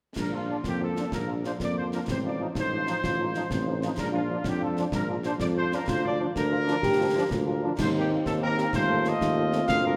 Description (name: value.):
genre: military-style march for wind band.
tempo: 126 BPM (dotted quarters).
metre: 6/8.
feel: straight.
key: Bb major.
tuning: A4 = 440 Hz.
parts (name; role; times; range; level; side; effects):
mellow trumpet section; melody; 0.2-10.0 s; F4 to F5; -33 LUFS; equal; none.
dark euphonium; second line; 0.2-10.0 s; Bb3 to G4; -34 LUFS; equal; none.
warm tuba; bass; 0.2-10.0 s; A1 to F2; -32 LUFS; equal; none.
concert snare drum, clash cymbals and concert bass drum; drums; 0.2-9.8 s; none; -36 LUFS; equal; none.
warm French horn section; accompaniment; 0.3-9.9 s; F3 to G4; -39 LUFS; equal; none.
mellow trombone section; sustained chords; 0.5-10.0 s; F3 to F4; -35 LUFS; equal; none.
room: moderate concert hall reverb, RT60 2.2 s.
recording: none.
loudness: -27 LUFS.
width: mono.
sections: 0.2-10.0 A section.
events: none.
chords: 0.2 Bb; 2.1 F7/A; 4.0 Bb; 5.9 Bb/D; 7.8 Cm7/Eb; 8.7 F7/Eb.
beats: | 0.17 0.64 | 1.12 1.60 | 2.07 2.55 | 3.02 3.50 | 3.98 4.45 | 4.93 5.40 | 5.88 6.35 | 6.83 7.30 | 7.78 8.26 | 8.73 9.21 | 9.68.